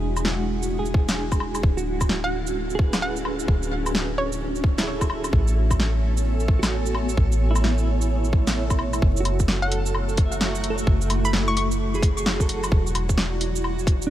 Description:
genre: future garage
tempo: 130 BPM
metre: 4/4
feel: swing 63% on 16ths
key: F# minor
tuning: A4 = 440 Hz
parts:
  - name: clean electric guitar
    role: accompaniment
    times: 0.0-14.1 s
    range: D4 to E5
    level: -31 LUFS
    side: right 4 dB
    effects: tremolo, sidechain pumping, dub echo
  - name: granular cloud pad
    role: sustained chords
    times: 0.0-14.1 s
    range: G#3 to G#5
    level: -29 LUFS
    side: equal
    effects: built-in reverb, vintage 12-bit sampler grit, sidechain pumping
  - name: soft 808-style bass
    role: bass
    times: 0.0-14.1 s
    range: D1 to A1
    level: -25 LUFS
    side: equal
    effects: sidechain pumping
  - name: garage drum kit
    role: drums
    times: 0.2-14.1 s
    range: hi-hat, shaker, snare drum, woodblock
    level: -27 LUFS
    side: equal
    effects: none
  - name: electronic kick drum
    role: drums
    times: 0.9-14.0 s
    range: none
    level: -21 LUFS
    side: equal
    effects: overdrive
  - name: backwards swelling texture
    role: texture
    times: 2.4-14.1 s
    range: F#3 to A4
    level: -36 LUFS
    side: equal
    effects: built-in reverb
  - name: hollow square pluck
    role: melody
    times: 2.2-4.6, 9.6-11.7 s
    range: C#5 to C#6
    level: -30 LUFS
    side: equal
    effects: chorus, cassette tape, digital delay
room: light reverb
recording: vinyl crackle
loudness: -20 LUFS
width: side -13 dB against mid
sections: 0.0-9.0 A section; 9.0-14.1 B section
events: none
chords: 0.0 E9; 1.6 Dmaj9; 5.3 Amaj9; 9.0 F#m9; 12.7 E9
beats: 0.25 0.71 1.18 | 1.64 2.10 2.56 3.02 | 3.48 3.94 4.41 4.87 | 5.33 5.79 6.25 6.71 | 7.18 7.64 8.10 8.56 | 9.02 9.48 9.95 10.41 | 10.87 11.33 11.79 12.25 | 12.71 13.18 13.64 14.10

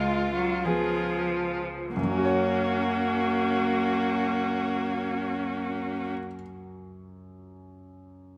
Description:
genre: classical, slow romantic movement for piano quartet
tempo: 47 BPM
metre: 4/4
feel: rubato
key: F# major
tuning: A4 = 442 Hz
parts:
  - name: warm violin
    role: melody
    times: 0.0-6.1 s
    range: E#4 to G#4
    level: -34 LUFS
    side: equal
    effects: none
  - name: warm cello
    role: second line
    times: 0.0-6.1 s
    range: E#3 to A#3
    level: -32 LUFS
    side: equal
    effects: none
  - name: clear baby grand piano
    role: accompaniment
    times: 0.0-8.4 s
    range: C#2 to C#5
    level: -34 LUFS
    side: equal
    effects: none
  - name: clear viola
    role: accompaniment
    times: 0.0-6.1 s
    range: C#4 to E#4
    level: -34 LUFS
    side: equal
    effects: none
room: moderate scoring stage reverb, RT60 1.7 s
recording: close, detailed microphones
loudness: -27 LUFS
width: mono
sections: 0.0-2.0 A section; 2.0-7.1 B section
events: slowing down 0.0-2.0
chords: 0.0 C#7; 2.0 F#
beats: 0.65 | 1.97 3.24 4.51 5.80

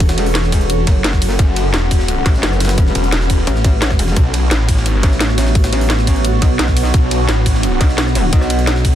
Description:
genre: dark technical drum and bass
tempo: 173 BPM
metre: 4/4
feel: straight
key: F# minor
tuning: A4 = 440 Hz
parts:
  - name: deep dark ambient pad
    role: sustained chords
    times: 0.0-8.9 s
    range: B3 to F#5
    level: -23 LUFS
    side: right 1 dB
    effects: chorus, built-in reverb, sidechain pumping
  - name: metallic wobble bass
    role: bass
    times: 0.0-8.9 s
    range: E1 to B1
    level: -16 LUFS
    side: equal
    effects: chorus
  - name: drum and bass drum kit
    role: drums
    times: 0.0-8.9 s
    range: hi-hat, ride cymbal, rim click, snare drum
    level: -21 LUFS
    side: equal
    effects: none
  - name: electronic kick drum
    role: drums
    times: 0.0-8.9 s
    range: none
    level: -14 LUFS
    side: equal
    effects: none
  - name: jungle sampler-style drum kit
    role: drums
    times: 0.0-8.9 s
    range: hi-hat, snare drum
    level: -28 LUFS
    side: equal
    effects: high-pass filter on hats, high-pass filter on snare, high-pass filter on room
  - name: granular cloud pad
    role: texture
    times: 0.0-8.9 s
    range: C#4 to F#5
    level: -23 LUFS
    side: equal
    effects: built-in reverb, sidechain pumping
  - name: snarling distorted saw bass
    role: bass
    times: 1.4-7.8 s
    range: E1 to B1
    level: -16 LUFS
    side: equal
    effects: distortion, sidechain pumping
room: digital ambience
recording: dense, heavily limited modern master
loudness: -12 LUFS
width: side -11 dB against mid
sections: 0.0-8.9 A section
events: none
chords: 0.0 F#m; 4.2 Bm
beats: | 0.00 0.35 0.70 1.04 | 1.39 1.74 2.08 2.43 | 2.78 3.12 3.47 3.82 | 4.17 4.51 4.86 5.21 | 5.55 5.90 6.25 6.59 | 6.94 7.29 7.63 7.98 | 8.33 8.67

